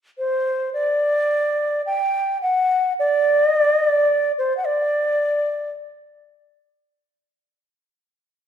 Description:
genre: japanese traditional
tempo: 55 BPM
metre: 4/4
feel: rubato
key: unclear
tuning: A4 = 440 Hz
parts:
  - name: bright reedy bansuri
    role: melody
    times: 0.2-5.7 s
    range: C5 to G5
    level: -18 LUFS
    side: equal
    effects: none
room: moderate recital hall reverb, RT60 1.5 s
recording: recorded in a church or concert hall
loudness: -18 LUFS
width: side -8 dB against mid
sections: 0.2-8.5 A section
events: none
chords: none

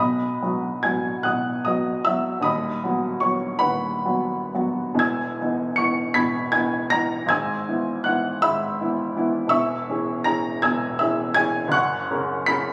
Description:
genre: classical, romantic nocturne for solo piano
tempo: 39-55 BPM (dotted quarters)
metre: 6/8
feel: rubato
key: B major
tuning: A4 = 440 Hz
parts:
  - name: warm upright piano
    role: solo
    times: 0.0-12.7 s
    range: D#1 to C#7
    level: -23 LUFS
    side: equal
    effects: none
room: moderate scoring stage reverb, RT60 1.6 s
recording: recorded on a phone in the room, studio ambience, compression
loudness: -23 LUFS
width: mono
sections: 0.0-12.7 A section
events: none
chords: 0.0 B; 2.5 B/D#; 5.0 Emaj7; 7.3 E/G#; 9.5 C#m/E; 11.8 F#

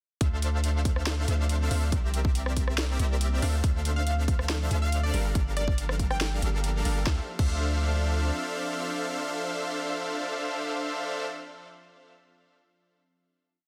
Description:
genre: future bass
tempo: 140 BPM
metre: 4/4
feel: half-time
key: D minor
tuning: A4 = 441 Hz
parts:
  - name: ethereal airy pad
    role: sustained chords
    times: 1.4-11.1 s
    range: D3 to G4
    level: -45 LUFS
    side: equal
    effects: ensemble chorus, built-in reverb, sidechain pumping
  - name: supersaw chords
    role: riff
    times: 0.2-11.3 s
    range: G3 to F5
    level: -34 LUFS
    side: equal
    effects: sidechain pumping, digital delay
  - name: long sustained 808-style bass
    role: bass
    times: 0.2-8.3 s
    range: G1 to D2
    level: -29 LUFS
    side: equal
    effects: sidechain pumping
  - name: electronic kick drum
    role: drums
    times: 0.2-7.5 s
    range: none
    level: -29 LUFS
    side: equal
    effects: none
  - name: trap drum kit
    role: drums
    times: 0.2-7.5 s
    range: crash cymbal, hi-hat, rim click, snare drum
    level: -36 LUFS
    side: equal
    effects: none
  - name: plucky unison lead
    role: melody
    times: 4.0-6.3 s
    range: D5 to G5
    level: -38 LUFS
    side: equal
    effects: lush chorus, sidechain pumping, dub echo
room: light reverb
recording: dense, heavily limited modern master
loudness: -28 LUFS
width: mono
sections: 0.2-7.1 drop; 7.1-10.5 final chord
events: drop 0.2-7.1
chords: 0.2 Dm9; 1.9 C9; 3.4 Dm9; 5.1 Gm9; 7.1 Dm9

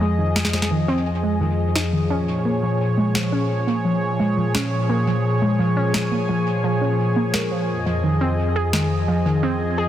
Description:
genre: IDM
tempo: 86 BPM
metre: 4/4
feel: straight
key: unclear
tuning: A4 = 440 Hz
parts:
  - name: warm analog pad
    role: sustained chords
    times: 0.0-9.9 s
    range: F2 to Eb5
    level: -21 LUFS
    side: equal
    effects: chorus
  - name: warbly dusty pluck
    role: arpeggios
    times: 0.0-9.8 s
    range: Eb3 to Bb4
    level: -23 LUFS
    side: right 1 dB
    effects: chorus, phaser, cassette tape, dub echo
  - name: bubbling stepped-filter texture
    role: texture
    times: 0.0-9.9 s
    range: Ab4 to Ab5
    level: -29 LUFS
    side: left 4 dB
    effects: chorus, built-in reverb
  - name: electronic snare drum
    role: drums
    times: 0.4-8.9 s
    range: none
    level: -26 LUFS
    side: left 1 dB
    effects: dub echo
room: light reverb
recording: dense, heavily limited modern master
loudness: -18 LUFS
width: side -11 dB against mid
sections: 0.0-9.9 A section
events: filter sweep on synth pluck 0.0-9.9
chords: 0.0 Fm7; 2.1 Bbm7; 7.7 Fm7

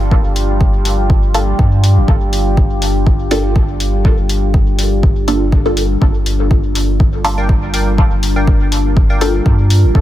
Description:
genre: dub techno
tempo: 122 BPM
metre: 4/4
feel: swing 54% on 16ths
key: G minor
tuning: A4 = 440 Hz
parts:
  - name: deep dark ambient pad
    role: sustained chords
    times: 0.0-10.0 s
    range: G3 to Bb4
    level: -20 LUFS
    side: left 1 dB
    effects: chorus, built-in reverb, sidechain pumping
  - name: warm sub bass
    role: bass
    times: 0.0-10.0 s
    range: G1 to G2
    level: -15 LUFS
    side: equal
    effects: sidechain pumping
  - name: electronic kick drum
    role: drums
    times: 0.1-10.0 s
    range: none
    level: -12 LUFS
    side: equal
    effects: none
  - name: electronic hi-hat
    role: drums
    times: 0.4-9.8 s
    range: none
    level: -22 LUFS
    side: left 2 dB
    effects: none
  - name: filtered dub chord stab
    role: stabs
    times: 1.3-9.5 s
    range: Bb3 to A4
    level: -21 LUFS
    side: equal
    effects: phaser, dub echo
  - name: wavetable chord stab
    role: riff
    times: 7.4-9.3 s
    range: Bb4 to G5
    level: -24 LUFS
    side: right 1 dB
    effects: sidechain pumping, dub echo
room: digital ambience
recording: none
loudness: -11 LUFS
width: side -13 dB against mid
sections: 0.0-10.0 A section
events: none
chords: 0.0 Gm7

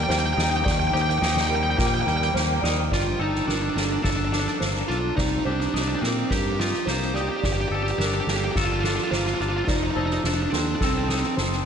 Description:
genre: post-rock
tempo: 106 BPM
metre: 4/4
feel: straight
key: G minor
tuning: A4 = 439 Hz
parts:
  - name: fuzz lead guitar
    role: melody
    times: 0.0-11.3 s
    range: C4 to G5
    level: -26 LUFS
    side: right 1 dB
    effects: distortion, diffuse ambient delay
  - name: felt-muted upright piano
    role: arpeggios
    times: 0.0-11.7 s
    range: A4 to D5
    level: -34 LUFS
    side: right 5 dB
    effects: diffuse ambient delay
  - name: twangy electric guitar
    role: arpeggios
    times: 0.0-11.7 s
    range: G2 to A4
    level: -30 LUFS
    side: left 3 dB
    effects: wide subtle chorus, diffuse ambient delay
  - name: fingered electric bass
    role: bass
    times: 0.0-11.7 s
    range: F1 to Bb2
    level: -27 LUFS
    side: equal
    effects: none
  - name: soft-mallet drum kit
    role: drums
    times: 0.1-11.6 s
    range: kick drum, snare drum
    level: -27 LUFS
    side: equal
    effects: none
room: wet huge ambient reverb, RT60 8.6 s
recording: dreamy mix soaked in reverb, nothing above 10.4 kHz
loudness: -21 LUFS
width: side -7 dB against mid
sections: 0.0-2.9 A section; 2.9-11.7 B section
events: none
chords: 0.0 Eb; 2.9 Gmadd9; 5.2 Cm7; 7.4 Gm9; 9.7 F7

